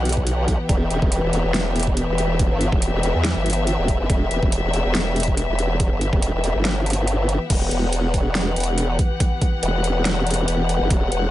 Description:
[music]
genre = heavy wobble dubstep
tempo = 141 BPM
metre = 4/4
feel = swing 55% on 16ths, half-time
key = E minor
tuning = A4 = 440 Hz
[part]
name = warm studio string section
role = sustained chords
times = 0.0-11.3 s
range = E3 to F#5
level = -25 LUFS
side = left 2 dB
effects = sidechain pumping
[part]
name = formant-sweep wobble bass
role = bass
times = 0.0-11.3 s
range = E1 to E2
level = -21 LUFS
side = equal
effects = chorus, overdrive
[part]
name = big-room dance drum kit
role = drums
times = 0.1-11.2 s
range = crash cymbal, hi-hat, snare drum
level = -26 LUFS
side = right 1 dB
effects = overdrive
[part]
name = electronic kick drum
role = drums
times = 0.2-11.0 s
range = none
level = -20 LUFS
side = equal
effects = overdrive
[sound]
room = little or no reverb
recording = nothing above 10.9 kHz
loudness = -18 LUFS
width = side -14 dB against mid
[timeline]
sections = 0.0-7.5 A section; 7.5-11.3 A section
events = drop 0.0-7.5, 7.5-11.3; kick drops out 6.7-7.5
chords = 0.0 Em; 7.5 Emadd9

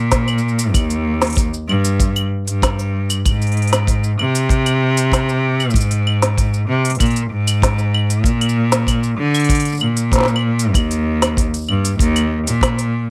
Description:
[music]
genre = folktronica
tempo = 96 BPM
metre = 4/4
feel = straight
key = unclear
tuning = A4 = 441 Hz
[part]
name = clear cello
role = bass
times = 0.0-13.1 s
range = Eb2 to D3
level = -19 LUFS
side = equal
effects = none
[part]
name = kick drum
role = drums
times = 0.1-12.7 s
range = none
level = -20 LUFS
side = equal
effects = none
[part]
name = organic electronic drum kit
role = drums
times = 0.1-12.9 s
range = claves, hi-hat, shaker, snare drum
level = -23 LUFS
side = equal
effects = none
[sound]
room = little or no reverb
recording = none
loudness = -17 LUFS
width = mono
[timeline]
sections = 0.0-13.1 A section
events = none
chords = none

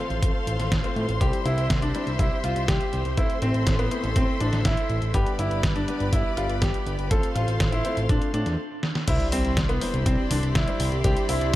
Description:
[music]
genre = italo disco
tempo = 122 BPM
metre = 4/4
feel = straight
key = unclear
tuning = A4 = 439 Hz
[part]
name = rich studio string section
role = sustained chords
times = 0.0-11.6 s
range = G4 to C6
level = -32 LUFS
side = left 1 dB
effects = none
[part]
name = warm grand piano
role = stabs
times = 0.0-11.6 s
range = G3 to C5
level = -33 LUFS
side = left 2 dB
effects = none
[part]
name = fat analog bass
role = bass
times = 0.1-11.6 s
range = G1 to A2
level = -27 LUFS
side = equal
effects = tube saturation
[part]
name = detuned 8-bit digital drum machine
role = drums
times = 0.1-11.6 s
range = crash cymbal, hi-hat, snare drum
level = -30 LUFS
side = equal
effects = none
[part]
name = electronic kick drum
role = drums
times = 0.2-11.6 s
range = none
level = -26 LUFS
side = equal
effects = none
[part]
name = bright baby grand piano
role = melody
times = 1.2-11.5 s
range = B3 to A4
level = -28 LUFS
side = equal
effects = tape echo
[part]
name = sub drop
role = sound effects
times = 9.1-11.0 s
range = none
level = -33 LUFS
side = equal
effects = none
[sound]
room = light reverb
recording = dark, warm production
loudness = -22 LUFS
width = side -15 dB against mid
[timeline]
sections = 0.0-9.1 A section; 9.1-11.6 B section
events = stop 8.6-9.1; drum fill 8.8; impact 9.1-11.0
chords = 0.0 F/A; 1.2 C; 3.2 Am; 5.1 G; 7.1 F/A; 9.1 Cadd9

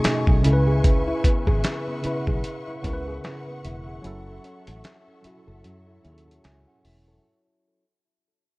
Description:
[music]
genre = contemporary R&B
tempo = 75 BPM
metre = 4/4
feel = swing 58% on 16ths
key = unclear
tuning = A4 = 440 Hz
[part]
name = tine electric piano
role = accompaniment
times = 0.0-7.5 s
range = B2 to G#5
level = -27 LUFS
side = right 1 dB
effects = medium stereo tremolo
[part]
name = warm symphonic string section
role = sustained chords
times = 0.0-7.2 s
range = A3 to C#6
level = -36 LUFS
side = left 1 dB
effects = none
[part]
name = nylon-string guitar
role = arpeggios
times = 0.0-7.8 s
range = B2 to A4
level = -29 LUFS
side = left 2 dB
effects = tape echo
[part]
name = dusty soul sampler-style drum kit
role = drums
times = 0.0-7.1 s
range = hi-hat, kick drum, snare drum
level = -21 LUFS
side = equal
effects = none
[part]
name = fingered electric bass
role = bass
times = 0.1-7.2 s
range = E1 to F#2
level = -27 LUFS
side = equal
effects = none
[sound]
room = studio ambience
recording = worn, warbling old tape, cassette tape, warbly pitch drift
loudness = -20 LUFS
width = side -24 dB against mid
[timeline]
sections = 0.0-7.2 A section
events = fade-out 0.0-7.2; break 4.0-7.2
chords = 0.4 C#m7; 4.0 F#m7

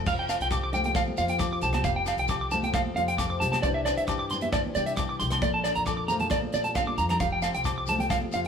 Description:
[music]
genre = highlife guitar band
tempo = 134 BPM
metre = 4/4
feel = straight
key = F major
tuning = A4 = 440 Hz
[part]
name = flamenco guitar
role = accompaniment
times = 0.0-8.5 s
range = F2 to A4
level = -34 LUFS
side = left 6 dB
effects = none
[part]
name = electric guitar at the edge of break-up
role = arpeggios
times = 0.1-8.4 s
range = D5 to D6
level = -27 LUFS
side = right 2 dB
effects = none
[part]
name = upright bass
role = bass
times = 0.1-8.5 s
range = F1 to C3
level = -33 LUFS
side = equal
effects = none
[part]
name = tight funk drum kit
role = drums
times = 0.1-8.5 s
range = crash cymbal, hi-hat, kick drum, rim click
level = -33 LUFS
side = equal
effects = none
[part]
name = shekere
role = percussion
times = 0.1-8.4 s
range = none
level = -39 LUFS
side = left 4 dB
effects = none
[part]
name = agogo bells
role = percussion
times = 0.3-8.2 s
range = none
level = -38 LUFS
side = left 10 dB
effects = none
[part]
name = congas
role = percussion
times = 0.7-8.3 s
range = none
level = -36 LUFS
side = right 4 dB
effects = none
[sound]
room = moderate stone room reverb, RT60 1.0 s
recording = band playing live in one room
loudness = -24 LUFS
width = side -7 dB against mid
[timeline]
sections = 0.1-8.5 A section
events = drum fill 6.7-7.2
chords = 0.1 Fadd9; 3.6 Cadd9; 5.4 Bbmaj7; 7.2 Fadd9

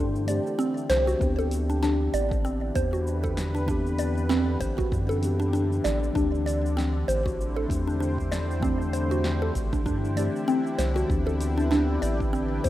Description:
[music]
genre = organic downtempo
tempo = 97 BPM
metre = 4/4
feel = swing 57% on 16ths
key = unclear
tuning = A4 = 440 Hz
[part]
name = muted felt-like synth keys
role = accompaniment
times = 0.0-12.7 s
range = E3 to G4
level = -31 LUFS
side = left 2 dB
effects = chorus, sidechain pumping, digital delay
[part]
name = warm analog pad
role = sustained chords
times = 0.0-12.7 s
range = D3 to G5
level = -34 LUFS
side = equal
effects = chorus, sidechain pumping
[part]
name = mallet-like synth pluck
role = arpeggios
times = 0.0-12.7 s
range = C4 to D5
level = -28 LUFS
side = equal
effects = chorus, phaser, digital delay
[part]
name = round analog bass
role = bass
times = 0.0-12.7 s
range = A1 to G2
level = -28 LUFS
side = equal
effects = sidechain pumping
[part]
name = deep house drum kit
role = drums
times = 0.2-12.7 s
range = cabasa, hi-hat, snare drum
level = -39 LUFS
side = equal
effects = none
[part]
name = electronic kick drum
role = drums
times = 1.2-12.7 s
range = none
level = -30 LUFS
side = equal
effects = none
[sound]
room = moderate plate reverb, RT60 2.3 s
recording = rough home demo mix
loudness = -23 LUFS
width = side -14 dB against mid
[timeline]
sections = 0.0-12.7 A section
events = none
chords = 0.0 D7sus4; 1.2 Cmaj7; 6.2 D7sus4; 11.1 Cmaj7

